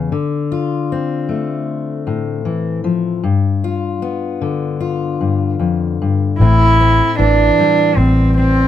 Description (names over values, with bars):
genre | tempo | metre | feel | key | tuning
acoustic folk-pop ballad | 77 BPM | 4/4 | straight | A minor | A4 = 440 Hz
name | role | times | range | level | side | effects
fingerpicked steel-string acoustic guitar | accompaniment | 0.0-8.7 s | E2 to F4 | -17 LUFS | left 5 dB | none
warm cello | melody | 6.4-8.7 s | C4 to E4 | -13 LUFS | right 3 dB | none
vintage muted fingered electric bass | bass | 6.4-8.7 s | A1 | -13 LUFS | equal | none
room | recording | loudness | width
light reverb | close, detailed microphones | -14 LUFS | side -11 dB against mid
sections
0.0-6.4 A section; 6.4-8.7 B section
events
none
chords
0.1 Dm7; 3.2 G7; 6.4 Am7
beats
| 0.11 0.89 1.67 2.46 | 3.24 4.03 4.82 5.61 | 6.41 7.19 7.97